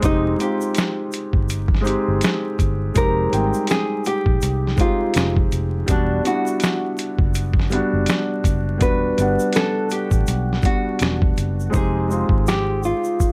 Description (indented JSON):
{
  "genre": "lo-fi hip hop",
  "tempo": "82 BPM",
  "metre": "4/4",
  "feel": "swing 59% on 16ths",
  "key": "F minor",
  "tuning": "A4 = 440 Hz",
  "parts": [
    { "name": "nylon-string guitar", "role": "melody", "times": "0.0-13.3 s", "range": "D4 to B4", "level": "-26 LUFS", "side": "equal", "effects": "low-pass filter" },
    { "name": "felt-muted upright piano", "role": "accompaniment", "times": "0.0-13.3 s", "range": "G3 to G5", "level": "-26 LUFS", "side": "equal", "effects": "low-pass filter" },
    { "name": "vintage muted fingered electric bass", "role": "bass", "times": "0.0-12.9 s", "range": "E1 to C2", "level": "-25 LUFS", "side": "equal", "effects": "none" },
    { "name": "dusty soul sampler-style drum kit", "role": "drums", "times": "0.0-13.3 s", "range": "finger snaps, hi-hat, kick drum, snare drum", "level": "-23 LUFS", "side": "equal", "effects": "none" },
    { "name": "tube shaker", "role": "percussion", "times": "0.0-13.3 s", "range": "none", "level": "-42 LUFS", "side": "equal", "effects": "none" }
  ],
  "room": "moderate small room reverb, RT60 0.5 s",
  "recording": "vinyl crackle",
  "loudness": "-20 LUFS",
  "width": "mono",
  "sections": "0.0-11.7 A section; 11.7-13.3 B section",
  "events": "hi-hats muted 11.7-13.3",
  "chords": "0.0 Fm9; 5.9 Em9; 11.7 Fm9"
}